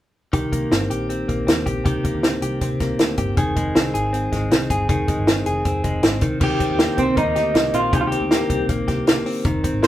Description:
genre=jangly indie pop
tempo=158 BPM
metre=4/4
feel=straight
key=unclear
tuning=A4 = 440 Hz
part: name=direct-recorded clean electric guitar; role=arpeggios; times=0.3-9.9 s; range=Eb3 to Ab4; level=-23 LUFS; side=left 1 dB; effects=none
part: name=vintage muted picked electric bass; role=bass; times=0.3-9.9 s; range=F1 to C3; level=-26 LUFS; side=equal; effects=none
part: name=compact cocktail drum kit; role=drums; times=0.3-9.9 s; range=crash cymbal, hi-hat, kick drum, snare drum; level=-20 LUFS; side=equal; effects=none
part: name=electric guitar through a small old amp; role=melody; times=6.4-9.9 s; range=C4 to C5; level=-20 LUFS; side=equal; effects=tremolo
room=moderate studio ambience, RT60 0.5 s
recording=band playing live in one room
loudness=-18 LUFS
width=side -13 dB against mid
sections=0.3-6.4 A section; 6.4-9.9 B section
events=none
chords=0.3 Cm7; 3.4 Fm7; 6.2 Cm; 6.4 Cm7

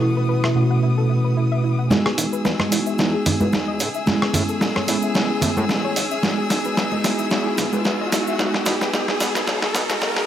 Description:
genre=nu-disco, nu disco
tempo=111 BPM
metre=4/4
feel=swing 55% on 16ths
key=E major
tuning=A4 = 440 Hz
part: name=soft octave-layered synth lead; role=melody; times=0.0-1.4 s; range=E4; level=-28 LUFS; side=equal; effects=chorus, tape echo
part: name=mellow tine electric piano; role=accompaniment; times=0.0-10.3 s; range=B2 to F#4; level=-23 LUFS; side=right 1 dB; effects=medium stereo tremolo
part: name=rich chamber violin section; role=sustained chords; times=0.0-10.3 s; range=B3 to E6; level=-28 LUFS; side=left 2 dB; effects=none
part: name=soft round pluck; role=arpeggios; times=0.0-10.2 s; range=C#4 to F#5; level=-28 LUFS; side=left 2 dB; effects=chorus, tape echo
part: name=dusty soul sampler-style drum kit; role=drums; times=0.4-10.3 s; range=hi-hat, rim click, snare drum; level=-23 LUFS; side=equal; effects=overdrive
part: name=fat analog bass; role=bass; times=1.9-10.2 s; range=E1 to B2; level=-29 LUFS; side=equal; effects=high-pass filter
part: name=congas and cabasa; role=percussion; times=1.9-10.1 s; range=none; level=-25 LUFS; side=right 2 dB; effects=none
part: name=riser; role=sound effects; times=4.0-10.3 s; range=none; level=-30 LUFS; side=right 1 dB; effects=none
room=light reverb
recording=high-pass filter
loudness=-18 LUFS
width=side -10 dB against mid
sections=0.0-1.9 A section; 1.9-10.3 B section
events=filter sweep on tine electric piano 0.0-1.9; build-up 1.9-10.3; drum fill 1.9-10.3; riser 4.0-10.3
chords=0.0 B7sus4; 1.9 Emaj7; 3.8 Amaj7; 6.0 Emaj7; 8.4 Bsus4

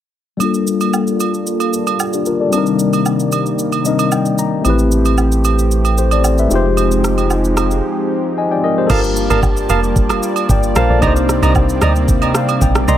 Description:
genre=amapiano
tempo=113 BPM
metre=4/4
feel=straight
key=G minor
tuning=A4 = 440 Hz
part: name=tine electric piano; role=accompaniment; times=0.4-13.0 s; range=G3 to C6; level=-18 LUFS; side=left 5 dB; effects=low-pass filter
part: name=warm analog pad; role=sustained chords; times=0.4-13.0 s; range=C3 to A5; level=-19 LUFS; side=right 1 dB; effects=chorus, sidechain pumping, low-pass filter
part: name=smooth R&B drum kit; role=drums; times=0.4-13.0 s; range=crash cymbal, kick drum, rim click, shaker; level=-19 LUFS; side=right 1 dB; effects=none
part: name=agogo bells and woodblock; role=percussion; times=0.4-12.6 s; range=none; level=-23 LUFS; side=right 9 dB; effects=none
part: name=round analog bass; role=bass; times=4.7-7.8 s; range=F1 to A1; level=-15 LUFS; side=equal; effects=none
part: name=percussive organ stab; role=stabs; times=8.9-13.0 s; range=Bb4 to Bb5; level=-20 LUFS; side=right 4 dB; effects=chorus, digital delay
part: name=deep log drum bass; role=bass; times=8.9-13.0 s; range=F1 to D2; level=-16 LUFS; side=equal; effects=none
room=digital ambience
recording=none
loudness=-12 LUFS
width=side -11 dB against mid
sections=0.4-8.9 A section; 8.9-13.0 B section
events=filter sweep 0.4-8.9; tine electric piano fill 3.6-4.7, 12.1-13.0; drop 8.9-13.0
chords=0.4 Gm9; 2.5 Cm9; 4.7 Am9; 6.5 Fm9; 8.9 Gm9; 11.0 Cm9

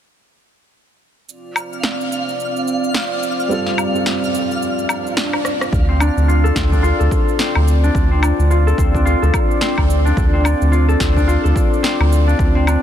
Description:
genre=organic downtempo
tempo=108 BPM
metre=4/4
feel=swing 59% on 16ths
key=D minor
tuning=A4 = 440 Hz
part: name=warm analog pad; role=sustained chords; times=1.3-12.8 s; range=C4 to D5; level=-23 LUFS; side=right 2 dB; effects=chorus, sidechain pumping
part: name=electronic shaker, woodblock, snare drum and rim click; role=drums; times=1.3-12.8 s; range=none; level=-23 LUFS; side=equal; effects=none
part: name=twinkling granular texture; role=texture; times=1.7-5.7 s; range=F5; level=-26 LUFS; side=left 1 dB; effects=built-in reverb
part: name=felt-muted upright piano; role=accompaniment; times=3.5-5.8 s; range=G3 to A4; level=-24 LUFS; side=right 2 dB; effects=sidechain pumping, digital delay
part: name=swell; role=sound effects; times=4.8-5.7 s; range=none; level=-27 LUFS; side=equal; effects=none
part: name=round analog bass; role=bass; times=5.7-12.8 s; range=D2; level=-14 LUFS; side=equal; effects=sidechain pumping
part: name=electronic kick drum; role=drums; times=5.7-12.5 s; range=none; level=-18 LUFS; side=equal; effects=none
part: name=concert harp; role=arpeggios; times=5.9-12.8 s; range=C4 to A4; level=-19 LUFS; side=left 4 dB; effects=low-pass filter, digital delay
room=light reverb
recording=dense, heavily limited modern master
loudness=-14 LUFS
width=side -10 dB against mid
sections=1.3-5.7 A section; 5.7-12.8 B section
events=swell 4.8-5.7; drum fill 5.3-5.7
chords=1.3 Dm7

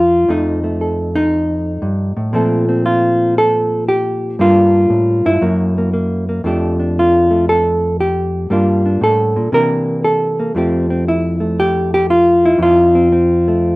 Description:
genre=solo jazz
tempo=117 BPM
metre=4/4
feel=swing 68% on 8ths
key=F major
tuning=A4 = 436 Hz
part: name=hollow-body jazz guitar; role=solo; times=0.0-13.8 s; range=F2 to Bb4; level=-12 LUFS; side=equal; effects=none
room=wet small room reverb, RT60 0.5 s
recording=rough home demo mix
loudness=-12 LUFS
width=side -21 dB against mid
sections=0.0-13.8 A section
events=none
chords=0.3 F7; 2.3 Bbsus2; 4.4 Gm9; 5.4 Gb7; 6.4 F69; 8.5 Gm7; 9.5 C13; 10.5 Fmaj9

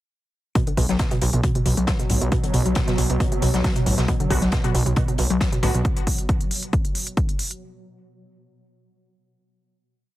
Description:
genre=driving peak-time techno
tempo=136 BPM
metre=4/4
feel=straight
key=B minor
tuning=A4 = 440 Hz
part: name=analog pluck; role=riff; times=0.6-5.8 s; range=A2 to F#3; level=-23 LUFS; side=right 1 dB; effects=chorus, tube saturation, sidechain pumping
part: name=swarming drone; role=drone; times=1.6-5.9 s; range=B2 to F#3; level=-30 LUFS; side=right 1 dB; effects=built-in reverb, sidechain pumping
part: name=electronic hi-hat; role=drums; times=0.6-7.6 s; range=none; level=-30 LUFS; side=equal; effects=overdrive, sidechain pumping on hats
part: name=electronic kick drum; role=drums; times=0.6-7.3 s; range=none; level=-22 LUFS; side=equal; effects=overdrive
part: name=open jazz drum kit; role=drums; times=0.6-5.7 s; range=hi-hat, snare drum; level=-34 LUFS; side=left 2 dB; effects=sidechain pumping on hats, high-pass filter on hats, high-pass filter on snare, high-pass filter on room
part: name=gritty driven synth bass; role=bass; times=0.8-5.8 s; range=B1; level=-23 LUFS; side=equal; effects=sidechain pumping
part: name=rave stab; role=stabs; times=4.3-5.7 s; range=D3 to F#4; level=-30 LUFS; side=left 2 dB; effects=chorus, built-in reverb, sidechain pumping, ping-pong delay
room=light reverb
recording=heavily compressed radio sound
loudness=-19 LUFS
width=side -15 dB against mid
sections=0.6-7.6 groove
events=filter sweep on synth arpeggio sound 0.6-5.8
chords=0.6 B5

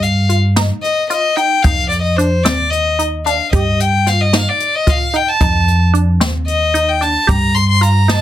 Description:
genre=progressive instrumental, band music in an uneven meter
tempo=223 BPM (eighths)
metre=7/8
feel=straight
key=Eb lydian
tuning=A4 = 440 Hz
part: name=rich violin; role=melody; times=0.0-8.2 s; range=C5 to C6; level=-15 LUFS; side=left 2 dB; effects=none
part: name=resonant blip pluck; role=arpeggios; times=0.0-8.2 s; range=C4 to G4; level=-22 LUFS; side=right 2 dB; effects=phaser
part: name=upright bass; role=bass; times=0.0-8.2 s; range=Eb2 to G2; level=-15 LUFS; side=equal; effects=none
part: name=jazz brush drum kit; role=drums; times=0.0-8.2 s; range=hi-hat, kick drum, snare drum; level=-18 LUFS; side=equal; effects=soft clipping on snare
room=little or no reverb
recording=dense, heavily limited modern master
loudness=-12 LUFS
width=side -12 dB against mid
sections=0.0-8.2 A section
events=violin solo 0.0-8.2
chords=0.0 Ebadd9/G; 1.6 F5; 3.5 Ebadd9/G; 5.4 F5; 7.3 Ebadd9/G

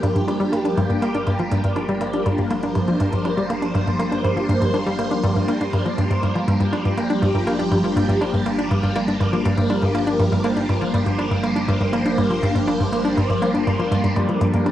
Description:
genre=ambient, sequencer-driven space music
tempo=121 BPM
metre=4/4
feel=straight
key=G minor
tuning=A4 = 442 Hz
part: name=phased string machine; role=sustained chords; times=0.0-14.7 s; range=F3 to C5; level=-21 LUFS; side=equal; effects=ensemble chorus, phaser, cassette tape
part: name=hollow square pluck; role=riff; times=0.0-14.7 s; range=G2 to D4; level=-21 LUFS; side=equal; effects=chorus, cassette tape, ping-pong delay
part: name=fat analog bass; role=bass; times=0.0-14.7 s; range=G1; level=-38 LUFS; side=equal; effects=none
part: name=electronic hi-hat and percussion blips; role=percussion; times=0.0-14.7 s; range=none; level=-36 LUFS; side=equal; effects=overdrive, cassette tape, ping-pong delay
part: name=Celtic harp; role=arpeggios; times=14.2-14.7 s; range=G3 to Bb3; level=-23 LUFS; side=left 1 dB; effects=auto-pan, cassette tape, ping-pong delay
room=wet studio reverb, RT60 0.6 s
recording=home recording on cassette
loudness=-18 LUFS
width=side -12 dB against mid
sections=0.0-14.7 A section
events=none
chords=0.0 Gm7

